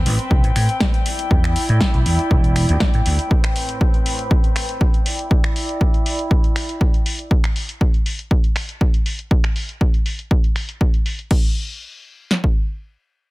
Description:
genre	filtered disco house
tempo	120 BPM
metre	4/4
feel	straight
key	unclear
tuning	A4 = 440 Hz
part	rich chamber string section	sustained chords	0.0-7.3 s	A2 to G5	-25 LUFS	equal	vintage 12-bit sampler grit, sidechain pumping, low-pass filter
part	vintage slap bass	bass	0.0-3.2 s	E1 to A2	-18 LUFS	equal	sidechain pumping, low-pass filter
part	punchy analog drum machine	drums	0.1-11.4 s	crash cymbal, finger snaps, hi-hat, snare drum	-26 LUFS	equal	sidechain pumping on hats, low-pass filter on hats, low-pass filter on snare, sidechain pumping on cymbals, low-pass filter on cymbals
part	punchy analog drum machine	drums	0.3-12.5 s	kick drum, snare drum	-17 LUFS	equal	none
room	little or no reverb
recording	none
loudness	-16 LUFS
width	side -20 dB against mid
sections	0.0-11.3 A section; 11.3-13.3 B section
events	filter sweep on drum 0.0-11.3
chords	0.0 Am9; 1.1 Em7; 3.3 Am9; 5.1 Em7; 7.3 N.C.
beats	0.31 0.81 | 1.31 1.81 2.31 2.81 | 3.31 3.81 4.31 4.81 | 5.31 5.81 6.31 6.81 | 7.31 7.81 8.31 8.81 | 9.31 9.81 10.31 10.81 | 11.31 11.81 12.31

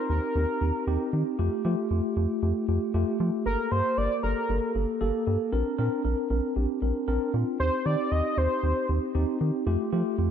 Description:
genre	synth-pop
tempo	116 BPM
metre	4/4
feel	straight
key	unclear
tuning	A4 = 438 Hz
part	octave-doubled lead	melody	0.0-8.9 s	Bb4 to Eb5	-29 LUFS	equal	chorus, tape echo
part	mellow tine electric piano	accompaniment	0.0-10.3 s	A3 to C5	-28 LUFS	equal	medium stereo tremolo
part	rubbery square bass	bass	0.1-10.3 s	G1 to F3	-26 LUFS	equal	none
room	moderate lush hall reverb, RT60 1.7 s, digital ambience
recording	dark, warm production, nothing above 7.9 kHz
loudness	-24 LUFS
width	side -8 dB against mid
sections	0.0-10.3 A section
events	none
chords	0.0 Eb6; 1.4 Fadd9; 3.5 Gmadd9; 5.5 Bbadd9; 7.6 Eb6; 9.7 Fadd9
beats	0.36 0.87 | 1.39 1.91 2.42 2.94 | 3.46 3.98 4.49 5.01 | 5.53 6.05 6.56 7.08 | 7.60 8.12 8.63 9.15 | 9.67 10.18

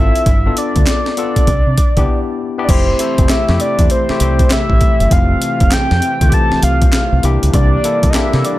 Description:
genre	R&B, new jack swing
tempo	99 BPM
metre	4/4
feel	swing 63% on 16ths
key	unclear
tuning	A4 = 440 Hz
part	soft octave-layered synth lead	melody	0.0-8.6 s	C5 to A5	-18 LUFS	equal	chorus, tape echo
part	barky tine electric piano	accompaniment	0.0-8.6 s	E3 to A4	-20 LUFS	left 5 dB	none
part	deep dub fingered electric bass	bass	0.0-8.4 s	F1 to C3	-15 LUFS	equal	none
part	breakbeat sampler-style drum kit	drums	0.2-8.6 s	crash cymbal, handclaps, hi-hat, kick drum, snare drum	-14 LUFS	equal	none
part	warm analog pad	sustained chords	2.7-8.6 s	C3 to D4	-24 LUFS	right 2 dB	chorus
room	little or no reverb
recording	none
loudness	-11 LUFS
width	side -16 dB against mid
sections	0.0-2.7 A section; 2.7-8.6 B section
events	break 2.1-2.7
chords	0.3 G9; 1.5 Cmaj9; 2.7 Fmaj7; 7.2 C9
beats	| 0.26 0.87 1.48 2.08 | 2.69 3.29 3.90 4.51 | 5.11 5.72 6.33 6.93 | 7.54 8.14

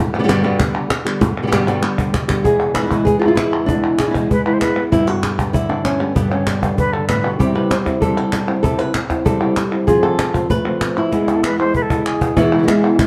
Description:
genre	flamenco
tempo	194 BPM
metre	4/4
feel	straight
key	unclear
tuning	A4 = 440 Hz
part	flamenco guitar	stabs	0.0-13.1 s	E2 to G4	-24 LUFS	equal	none
part	flamenco guitar	melody	0.1-13.0 s	E2 to C5	-20 LUFS	equal	plate reverb
part	palmas hand claps	percussion	0.1-13.1 s	none	-27 LUFS	equal	none
part	cajon	percussion	0.3-13.1 s	none	-24 LUFS	equal	none
part	concert flute	second line	4.3-7.3, 11.3-12.4 s	G#4 to C5	-23 LUFS	equal	none
room	moderate studio reverb, RT60 0.8 s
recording	dark, warm production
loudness	-17 LUFS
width	mono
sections	0.0-2.4 A section; 2.4-12.4 B section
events	drum fill 1.7-2.4, 11.1-12.4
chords	0.0 G; 2.4 E; 4.9 G; 7.4 C; 9.9 F; 11.1 E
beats	0.29 0.60 0.91 | 1.21 1.52 1.83 2.14 | 2.45 2.76 3.07 3.38 | 3.69 4.00 4.30 4.61 | 4.92 5.23 5.54 5.85 | 6.16 6.47 6.78 7.08 | 7.39 7.71 8.01 8.32 | 8.63 8.95 9.26 9.57 | 9.88 10.19 10.50 10.81 | 11.12 11.43 11.74 12.05 | 12.37 12.68 12.99

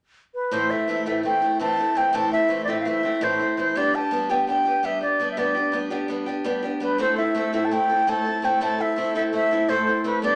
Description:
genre	celtic folk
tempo	111 BPM (dotted quarters)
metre	9/8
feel	straight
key	A minor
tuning	A4 = 438 Hz
part	bright baroque flute	melody	0.3-10.4 s	B4 to A5	-24 LUFS	equal	none
part	picked old ladder-braced acoustic guitar	accompaniment	0.5-10.4 s	A2 to A4	-27 LUFS	equal	none
room	wet large studio reverb, RT60 0.8 s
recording	none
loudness	-23 LUFS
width	mono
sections	0.5-10.4 A section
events	none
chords	0.0 N.C.; 0.5 Am; 3.8 G; 7.0 Am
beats	| 0.53 1.07 1.61 | 2.15 2.68 3.22 | 3.76 4.30 4.84 | 5.38 5.92 6.46 | 6.99 7.53 8.07 | 8.61 9.15 9.69 | 10.23

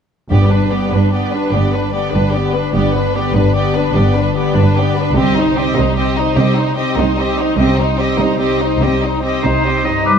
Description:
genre	cinematic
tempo	98 BPM (dotted quarters)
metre	12/8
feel	straight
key	G major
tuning	A4 = 442 Hz
part	warm symphonic violin section	melody	0.3-10.1 s	B4 to Eb5	-23 LUFS	left 5 dB	none
part	warm symphonic violin section	second line	0.3-10.1 s	Eb4 to B4	-21 LUFS	left 1 dB	none
part	warm symphonic viola section	accompaniment	0.3-10.1 s	B3 to Eb4	-19 LUFS	right 1 dB	none
part	concert harp	arpeggios	0.3-10.2 s	G2 to G4	-23 LUFS	left 8 dB	none
part	rich studio double bass section	bass	0.3-10.0 s	G1 to C2	-19 LUFS	right 2 dB	none
part	rich symphonic cello section	bass	0.3-10.0 s	G2 to C3	-19 LUFS	right 2 dB	none
part	timpani	percussion	0.3-0.9 s	G2	-21 LUFS	equal	none
part	bright oboe	second line	9.4-10.2 s	B4 to Eb5	-18 LUFS	right 1 dB	none
part	silver concert flute	second line	10.1-10.2 s	D6	-12 LUFS	left 3 dB	none
part	warm clarinet	second line	10.1-10.2 s	G3	-16 LUFS	left 3 dB	none
room	moderate scoring stage reverb, RT60 1.7 s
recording	none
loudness	-12 LUFS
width	side -7 dB against mid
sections	0.3-10.1 A section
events	none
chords	0.3 G; 5.2 Cm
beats	| 0.30 0.92 1.53 2.14 | 2.75 3.36 3.96 4.57 | 5.17 5.78 6.38 6.99 | 7.60 8.21 8.82 9.44 | 10.06

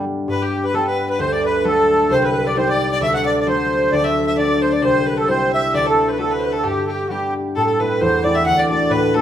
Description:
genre	celtic folk, Celtic polka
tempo	132 BPM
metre	2/4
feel	swing 53% on 8ths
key	G major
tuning	A4 = 440 Hz
part	accordion	melody	0.0-9.2 s	F#4 to F#5	-19 LUFS	right 1 dB	light tremolo tuning, plate reverb
part	concert harp	accompaniment	0.0-9.2 s	C2 to F#4	-19 LUFS	equal	plate reverb
part	bright fiddle	second line	0.3-9.2 s	G4 to F#5	-23 LUFS	left 3 dB	plate reverb
room	wet studio reverb, RT60 0.6 s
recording	rough home demo mix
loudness	-15 LUFS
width	side -10 dB against mid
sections	0.3-7.6 A section; 7.6-9.2 B section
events	none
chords	0.3 G; 1.2 D; 2.1 Cm; 3.0 D; 4.8 C; 5.7 D; 6.6 G; 7.6 Am; 8.5 D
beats	| 0.29 0.75 | 1.20 1.65 | 2.11 2.56 | 3.02 3.47 | 3.92 4.38 | 4.83 5.28 | 5.74 6.19 | 6.65 7.10 | 7.55 8.01 | 8.46 8.92

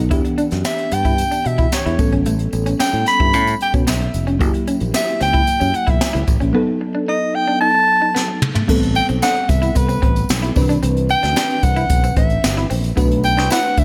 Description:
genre	polished 1980s jazz-funk pop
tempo	112 BPM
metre	4/4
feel	straight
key	A dorian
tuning	A4 = 440 Hz
part	bell-like FM electric piano	accompaniment	0.0-13.8 s	D3 to B4	-25 LUFS	equal	analog chorus
part	electric guitar at the edge of break-up	riff	0.0-13.8 s	A3 to F#4	-28 LUFS	equal	subtle chorus
part	fingered electric bass	bass	0.0-13.8 s	F1 to B2	-22 LUFS	equal	none
part	jazz brush drum kit	drums	0.1-13.8 s	crash cymbal, hi-hat, kick drum, snare drum, toms	-22 LUFS	equal	gated reverb
part	tambourine	percussion	0.1-13.8 s	none	-37 LUFS	equal	none
part	warm soprano saxophone	melody	0.7-13.8 s	B4 to B5	-21 LUFS	equal	none
room	light reverb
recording	none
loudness	-17 LUFS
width	mono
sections	0.0-8.7 A section; 8.7-13.8 B section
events	drum fill 8.2-8.7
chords	0.1 Em7; 2.0 A9; 4.4 F#7b9; 6.5 B7; 8.7 Am9; 10.6 Cmaj9; 13.0 Bm7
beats	| 0.12 0.65 1.19 1.72 | 2.26 2.80 3.33 3.87 | 4.40 4.94 5.47 6.01 | 6.55 7.08 7.62 8.15 | 8.69 9.22 9.76 10.29 | 10.83 11.37 11.90 12.44 | 12.97 13.51

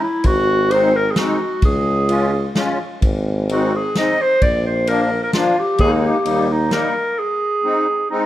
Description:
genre	alpine folk, alpine dance band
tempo	130 BPM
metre	3/4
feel	straight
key	Ab major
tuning	A4 = 440 Hz
part	warm clarinet	melody	0.0-8.3 s	Eb4 to Eb5	-18 LUFS	equal	none
part	clear tuba	bass	0.2-6.9 s	Ab1 to Eb2	-20 LUFS	equal	none
part	warm soul drum kit	drums	0.2-6.8 s	kick drum, ride cymbal, snare drum	-20 LUFS	equal	none
part	musette accordion	accompaniment	0.7-8.3 s	F3 to F4	-21 LUFS	left 2 dB	none
room	moderate recital hall reverb, RT60 1.3 s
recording	none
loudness	-15 LUFS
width	side -13 dB against mid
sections	0.0-8.3 A section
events	none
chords	0.2 Ab7; 1.6 Db; 3.0 Ab; 4.4 Bb; 5.8 Ebsus4; 6.3 Eb; 7.2 Ab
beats	| 0.25 0.71 1.17 | 1.63 2.09 2.56 | 3.03 3.50 3.96 | 4.42 4.88 5.34 | 5.80 6.26 6.72 | 7.18 7.64 8.11

